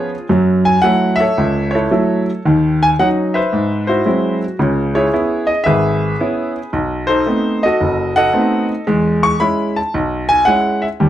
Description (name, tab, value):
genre	solo jazz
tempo	112 BPM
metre	4/4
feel	swing 67% on 8ths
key	E major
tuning	A4 = 439 Hz
part	clear baby grand piano	solo	0.0-11.1 s	F#1 to C#6	-13 LUFS	equal	none
room	moderate club reverb, RT60 0.7 s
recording	none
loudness	-13 LUFS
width	side -12 dB against mid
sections	0.0-11.1 A section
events	none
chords	0.3 F#m7; 2.4 D#m7; 3.5 G#7alt; 4.6 C#m7; 6.7 B7b9; 8.9 E6